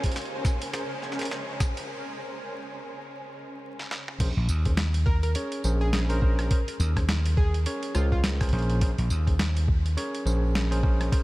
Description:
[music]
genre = glitch hop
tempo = 104 BPM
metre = 4/4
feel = swing 58% on 16ths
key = Bb minor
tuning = A4 = 441 Hz
[part]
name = warm symphonic string section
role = sustained chords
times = 0.0-4.2 s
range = Db3 to Db4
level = -38 LUFS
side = equal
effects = sidechain pumping
[part]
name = bell-like tine electric piano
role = stabs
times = 0.0-11.2 s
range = Db4 to Db5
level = -35 LUFS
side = equal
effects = vintage 12-bit sampler grit, sidechain pumping, tape echo
[part]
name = gritty driven synth bass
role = bass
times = 0.0-11.1 s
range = Bb1 to Eb2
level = -27 LUFS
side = equal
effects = tube saturation, high-pass filter
[part]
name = boom bap sampler-style drum kit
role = drums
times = 0.0-11.2 s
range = crash cymbal, hi-hat, rim click, snare drum, tambourine, toms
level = -33 LUFS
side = equal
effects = high-pass filter on hats, high-pass filter on snare, high-pass filter on perc, high-pass filter on toms, high-pass filter on cymbals
[part]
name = electronic kick drum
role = drums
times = 0.0-11.2 s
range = none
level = -24 LUFS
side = equal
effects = none
[part]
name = granular cloud pad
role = texture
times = 0.0-1.9 s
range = Bb4 to Ab5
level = -39 LUFS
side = equal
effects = built-in reverb, analog chorus, sidechain pumping
[part]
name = vintage slap bass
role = bass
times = 4.4-9.9 s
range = Bb1 to Eb2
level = -24 LUFS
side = equal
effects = none
[part]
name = plucky unison lead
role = melody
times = 5.1-8.2 s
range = F4 to Bb4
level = -38 LUFS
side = equal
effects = tape echo
[sound]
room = light reverb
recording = vinyl crackle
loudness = -23 LUFS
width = side -19 dB against mid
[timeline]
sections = 0.0-4.2 A section; 4.2-11.2 B section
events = build-up 0.0-4.2; drum fill 0.0-1.9, 3.8-4.2; filter sweep on string section 0.0-4.2; break 1.9-4.2; drop 4.2-11.2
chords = 0.0 Bbm9

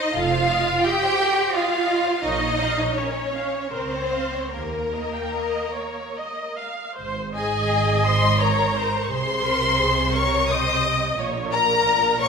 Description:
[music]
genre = classical, slow romantic movement for string orchestra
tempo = 71-90 BPM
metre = 3/4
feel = rubato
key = Ab major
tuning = A4 = 440 Hz
[part]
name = warm symphonic violin section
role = melody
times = 0.0-12.3 s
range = Bb4 to Eb6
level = -24 LUFS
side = left 4 dB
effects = none
[part]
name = rich studio violin section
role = second line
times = 0.0-12.3 s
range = Ab4 to G5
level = -26 LUFS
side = left 2 dB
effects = none
[part]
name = warm symphonic viola section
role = accompaniment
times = 0.0-12.3 s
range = G4 to G5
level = -28 LUFS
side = right 2 dB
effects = none
[part]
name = warm symphonic cello section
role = bass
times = 0.0-12.3 s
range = Ab2 to G4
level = -26 LUFS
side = right 4 dB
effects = none
[part]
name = warm symphonic double bass section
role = bass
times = 0.1-12.3 s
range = F1 to Eb2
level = -28 LUFS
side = right 3 dB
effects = none
[sound]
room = moderate concert hall reverb, RT60 2.3 s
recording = minimal, uncompressed stereo recording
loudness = -20 LUFS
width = side -6 dB against mid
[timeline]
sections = 0.0-7.0 A section; 7.0-12.3 B section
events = none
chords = 0.1 F7; 2.2 Bbm; 3.7 Bbm/Db; 4.5 Eb; 7.0 Ab5; 9.1 Bbm11/C; 11.2 Bbm

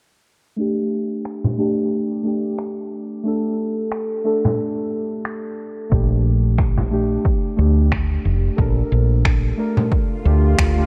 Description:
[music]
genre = organic downtempo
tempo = 90 BPM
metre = 4/4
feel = swing 57% on 16ths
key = unclear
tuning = A4 = 440 Hz
[part]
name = muted felt-like synth keys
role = accompaniment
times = 0.6-10.9 s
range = A3 to Bb4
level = -24 LUFS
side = equal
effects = chorus, sidechain pumping, low-pass filter, analog delay
[part]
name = electronic finger snaps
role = drums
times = 1.3-10.7 s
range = none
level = -28 LUFS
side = equal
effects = overdrive
[part]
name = frame drum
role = percussion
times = 1.4-9.9 s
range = none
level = -24 LUFS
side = equal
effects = none
[part]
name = woody fretless electric bass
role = bass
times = 5.9-10.8 s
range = F1 to D2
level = -19 LUFS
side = equal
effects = sidechain pumping
[part]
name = electronic kick drum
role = drums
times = 5.9-10.7 s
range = none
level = -22 LUFS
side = equal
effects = overdrive
[part]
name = swell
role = sound effects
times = 10.1-10.9 s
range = none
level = -32 LUFS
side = equal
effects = none
[sound]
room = moderate echo chamber reverb, RT60 2.5 s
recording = echo-heavy mix, low-pass filter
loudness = -20 LUFS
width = mono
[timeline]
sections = 0.6-10.9 A section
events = filter sweep on synth keys 0.6-10.9; filter sweep 0.6-10.9; swell 10.1-10.9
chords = 0.6 A7sus4; 5.9 Bb

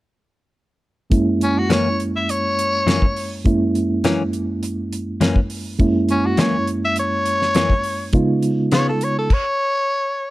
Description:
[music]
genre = straight-eighth soul blues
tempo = 103 BPM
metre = 4/4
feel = straight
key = F# mixolydian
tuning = A4 = 440 Hz
[part]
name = reed electric piano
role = accompaniment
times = 1.1-9.3 s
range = F#2 to E#4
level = -20 LUFS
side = right 2 dB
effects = fast tremolo
[part]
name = damped 70s drum kit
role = drums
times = 1.1-9.4 s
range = crash cymbal, hi-hat, kick drum, snare drum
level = -20 LUFS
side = equal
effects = none
[part]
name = growling tenor saxophone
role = melody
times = 1.4-10.3 s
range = C#4 to E5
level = -20 LUFS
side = left 1 dB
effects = none
[part]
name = direct-recorded clean electric guitar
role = stabs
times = 1.7-8.9 s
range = F#2 to E#4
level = -20 LUFS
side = left 3 dB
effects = none
[sound]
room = small room ambience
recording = dry, close 1970s-style studio recording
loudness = -17 LUFS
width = side -17 dB against mid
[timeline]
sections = 1.1-10.3 A section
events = none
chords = 1.1 F#7; 8.1 C#7

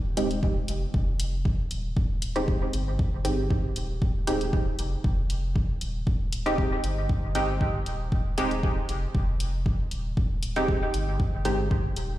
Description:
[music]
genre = dub techno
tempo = 117 BPM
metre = 4/4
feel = swing 53% on 16ths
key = F minor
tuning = A4 = 440 Hz
[part]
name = pure sine sub bass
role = bass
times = 0.0-12.2 s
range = Eb1 to G1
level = -30 LUFS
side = equal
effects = sidechain pumping
[part]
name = filtered dub chord stab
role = stabs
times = 0.2-11.6 s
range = Ab3 to G4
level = -29 LUFS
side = right 1 dB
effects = chorus, phaser, sidechain pumping, dub echo
[part]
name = electronic hi-hat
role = drums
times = 0.2-12.1 s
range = none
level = -37 LUFS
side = left 2 dB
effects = none
[part]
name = electronic kick drum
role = drums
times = 0.4-11.8 s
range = none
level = -26 LUFS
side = equal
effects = overdrive
[sound]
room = light reverb, digital ambience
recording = played on a big sound system in a bare room, stone room reverb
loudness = -24 LUFS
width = side -14 dB against mid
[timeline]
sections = 0.0-12.2 A section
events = none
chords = 0.0 Fm7

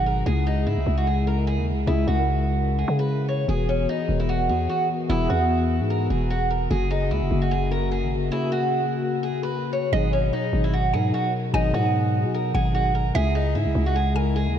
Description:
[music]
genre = hip hop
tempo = 149 BPM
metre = 4/4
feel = half-time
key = G# minor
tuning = A4 = 439 Hz
[part]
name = picked old ladder-braced acoustic guitar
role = melody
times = 0.0-14.5 s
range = C#4 to C#5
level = -26 LUFS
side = right 2 dB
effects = low-pass filter, analog delay
[part]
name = mellow tine electric piano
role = accompaniment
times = 0.0-14.6 s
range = B2 to A#4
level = -26 LUFS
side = left 4 dB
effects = ensemble chorus, low-pass filter
[part]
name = growling 808-style bass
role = bass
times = 0.0-14.6 s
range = E1 to C#3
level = -23 LUFS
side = right 1 dB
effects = none
[part]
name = mallet-like synth pluck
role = second line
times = 9.9-14.6 s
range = D#5 to G#5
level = -32 LUFS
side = right 2 dB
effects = chorus, phaser, analog delay
[sound]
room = moderate huge ambient reverb, RT60 5.2 s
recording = dreamy mix soaked in reverb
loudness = -20 LUFS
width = side -9 dB against mid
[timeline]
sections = 0.0-9.9 A section; 9.9-14.6 B section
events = none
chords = 0.3 C#m; 3.5 Eadd9; 6.7 F#add9; 9.9 G#m7; 13.1 C#m

